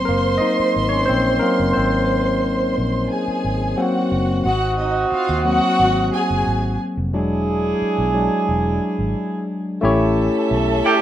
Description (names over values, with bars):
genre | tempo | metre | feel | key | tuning
lush 1970s-style soul | 89 BPM | 4/4 | straight | unclear | A4 = 442 Hz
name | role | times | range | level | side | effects
dark studio violin section | second line | 0.0-11.0 s | C#4 to C6 | -22 LUFS | right 1 dB | none
barky tine electric piano | accompaniment | 0.0-11.0 s | Gb3 to Eb5 | -20 LUFS | left 2 dB | none
vintage muted fingered electric bass | bass | 0.0-10.8 s | E1 to Eb2 | -23 LUFS | equal | none
mellow horn section | stabs | 4.5-11.0 s | C4 to G#4 | -21 LUFS | right 3 dB | tape echo
room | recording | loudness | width
moderate studio reverb, RT60 0.6 s | rough home demo mix | -17 LUFS | side -11 dB against mid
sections
0.0-4.5 A section; 4.5-9.8 B section; 9.8-11.0 C section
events
tine electric piano solo 0.0-4.5, 4.5-9.8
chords
0.0 Ab9; 7.1 E7; 9.8 A7